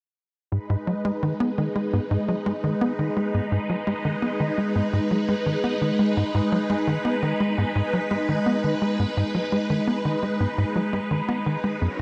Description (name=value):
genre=ambient, sequencer-driven space music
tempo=85 BPM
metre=4/4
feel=straight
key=G# minor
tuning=A4 = 439 Hz
part: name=phased string machine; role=sustained chords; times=0.5-12.0 s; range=F#3 to B4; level=-28 LUFS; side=equal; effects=ensemble chorus, phaser
part: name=tight sequencer bass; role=riff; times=0.5-12.0 s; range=F#2 to B3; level=-27 LUFS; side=equal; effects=analog chorus, analog delay
room=wet huge ambient reverb, RT60 8.6 s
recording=none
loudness=-24 LUFS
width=mono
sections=0.5-12.0 A section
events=none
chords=0.5 G#m